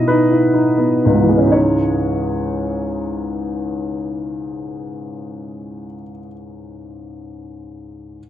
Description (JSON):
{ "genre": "neoclassical minimalist piano", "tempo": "81 BPM", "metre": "3/4", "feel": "rubato", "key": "C# minor", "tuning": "A4 = 440 Hz", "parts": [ { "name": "warm upright piano", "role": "solo", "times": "0.0-8.2 s", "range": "C#2 to D#5", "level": "-17 LUFS", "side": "equal", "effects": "none" } ], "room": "light reverb", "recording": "dry, close 1970s-style studio recording", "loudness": "-15 LUFS", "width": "side -11 dB against mid", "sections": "0.0-1.5 A section; 1.5-6.0 B section", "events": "slowing down 0.0-1.5", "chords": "0.0 B; 1.5 C#madd9", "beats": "0.05 0.78 | 1.54 2.29 3.02 | 3.77 4.51 5.26" }